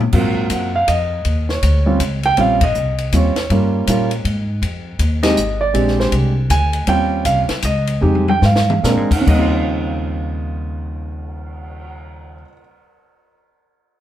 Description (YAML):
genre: jazz piano trio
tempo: 136-161 BPM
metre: 3/4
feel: swing 63% on 8ths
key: Eb mixolydian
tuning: A4 = 437 Hz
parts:
  - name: upright bass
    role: bass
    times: 0.0-12.4 s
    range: Ab1 to Bb2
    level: -19 LUFS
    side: equal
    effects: none
  - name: compact cocktail drum kit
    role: drums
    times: 0.0-11.8 s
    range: crash cymbal, cymbal swell, hi-hat, kick drum, ride cymbal, snare drum, toms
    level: -22 LUFS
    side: left 2 dB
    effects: none
  - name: warm grand piano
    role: melody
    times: 0.1-12.6 s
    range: Eb2 to Ab5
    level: -18 LUFS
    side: right 2 dB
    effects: none
room: moderate studio reverb, RT60 0.8 s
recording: heard from further back in the room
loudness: -14 LUFS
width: side -12 dB against mid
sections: 0.0-9.3 A section; 9.3-11.9 B section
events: band accent 2.6, 5.2; slowing down 6.9-9.3; drum fill 8.0-8.8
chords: 0.1 Ab13; 1.3 Eb13; 3.5 Gm7b5; 4.2 N.C.; 4.6 Fm7; 5.7 Bb13; 6.9 Eb13; 8.0 Fm7; 8.8 Bb9; 9.3 Eb13